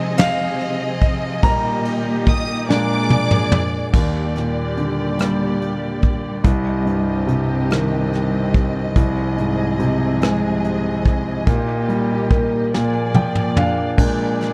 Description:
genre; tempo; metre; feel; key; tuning
six-eight pop ballad; 48 BPM (dotted quarters); 6/8; straight; Eb major; A4 = 441 Hz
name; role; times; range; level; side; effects
clear grand piano; accompaniment; 0.0-14.5 s; C2 to Bb5; -22 LUFS; equal; none
dark studio string section; sustained chords; 0.0-14.5 s; Bb2 to Eb5; -26 LUFS; equal; none
soft brush drum kit; drums; 0.2-14.5 s; crash cymbal, hi-hat, kick drum, ride cymbal, rim click, snare drum, toms; -20 LUFS; equal; none
warm studio violin section; second line; 2.3-3.9 s; D6 to Eb6; -28 LUFS; equal; none
room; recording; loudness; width
light reverb, studio reverb; dark, warm production; -19 LUFS; mono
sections
0.0-3.9 A section; 3.9-14.0 B section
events
grand piano solo 0.0-3.9; drum fill 2.7-3.9, 12.7-14.0; grand piano fill 12.7-14.0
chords
0.0 Fm7/C; 1.4 Eb/Bb; 2.7 Bb7; 3.9 Ebmaj7; 6.4 Cm; 9.0 Fm7/C; 11.5 Eb/Bb; 12.7 Bb7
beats
0.18 | 1.43 2.69 | 3.94 5.19 | 6.45 7.71 | 8.96 10.22 | 11.47 12.73 | 13.98

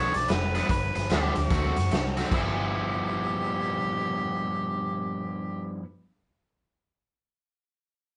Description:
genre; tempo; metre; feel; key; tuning
electric blues shuffle; 148 BPM; 4/4; swing 63% on 8ths; G mixolydian; A4 = 441 Hz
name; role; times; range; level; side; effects
warm harmonica; melody; 0.0-5.7 s; C4 to D5; -33 LUFS; equal; overdrive
crunchy overdriven guitar; riff; 0.0-5.8 s; G2 to F#4; -33 LUFS; equal; none
vintage muted fingered electric bass; bass; 0.0-5.7 s; F1 to F#2; -33 LUFS; equal; none
raw garage drum kit; drums; 0.1-2.4 s; crash cymbal, hi-hat, kick drum, snare drum; -31 LUFS; equal; none
room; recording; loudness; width
moderate studio reverb, RT60 0.5 s; band playing live in one room, nothing above 10.3 kHz; -28 LUFS; mono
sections
0.0-2.3 A section; 2.3-5.5 B section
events
none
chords
0.0 G7; 1.5 D7; 2.3 G6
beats
0.29 | 0.69 1.10 1.50 1.91 | 2.31 2.71 3.12 3.52 | 3.93 4.33 4.74 5.14

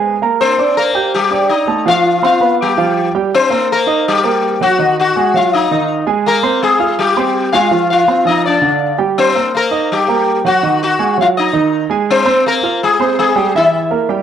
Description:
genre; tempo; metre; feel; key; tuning
latin; 164 BPM; 4/4; straight; unclear; A4 = 437 Hz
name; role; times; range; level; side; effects
sitar; melody; 0.0-14.2 s; G3 to F5; -13 LUFS; left 4 dB; none
clear grand piano; accompaniment; 0.0-14.2 s; D3 to G6; -16 LUFS; right 7 dB; none
room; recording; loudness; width
moderate spring reverb, RT60 1.6 s, studio ambience; home recording on cassette; -11 LUFS; side -9 dB against mid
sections
0.0-3.3 A section; 3.3-14.2 A section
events
none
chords
0.4 Ebmaj7; 1.9 F5; 2.6 G7; 3.3 Cm7; 4.8 Ab5; 6.3 Abmaj13; 7.7 F5; 8.4 Dmadd11; 9.2 Eb6; 10.6 Ab5; 12.1 Abmaj13; 13.6 Edim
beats
0.04 | 0.41 0.78 1.14 1.51 | 1.87 2.24 2.60 2.97 | 3.33 3.70 4.06 4.43 | 4.79 5.16 5.52 5.89 | 6.25 6.62 6.98 7.35 | 7.71 8.08 8.44 8.81 | 9.17 9.54 9.90 10.27 | 10.63 11.00 11.36 11.73 | 12.09 12.46 12.82 13.19 | 13.55 13.92

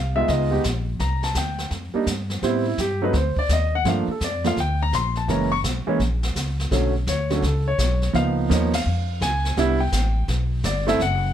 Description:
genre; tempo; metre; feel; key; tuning
jazz piano trio; 168 BPM; 4/4; swing 65% on 8ths; unclear; A4 = 439 Hz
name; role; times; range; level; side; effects
clear upright piano; melody; 0.0-11.3 s; D3 to C#6; -22 LUFS; right 1 dB; none
upright bass; bass; 0.0-11.3 s; F#1 to A2; -23 LUFS; equal; none
jazz brush drum kit; drums; 0.3-11.3 s; brushed snare drum, hi-hat, kick drum, ride cymbal, snare drum; -30 LUFS; right 1 dB; none
room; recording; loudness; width
light reverb; none; -20 LUFS; side -10 dB against mid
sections
0.0-6.7 A section; 6.7-11.3 B section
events
band accent 8.7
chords
0.3 C#9; 1.0 C7sus2; 2.4 Am9; 3.1 D7(no3); 3.9 Gm9; 5.3 F#7; 6.7 Bm9; 8.1 C#13; 9.6 Cmaj7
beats
0.28 0.64 | 0.99 1.35 1.71 2.07 | 2.42 2.78 3.14 3.50 | 3.85 4.21 4.57 4.92 | 5.28 5.64 6.00 6.35 | 6.71 7.07 7.42 7.78 | 8.14 8.49 8.85 9.21 | 9.56 9.92 10.28 10.63 | 10.99

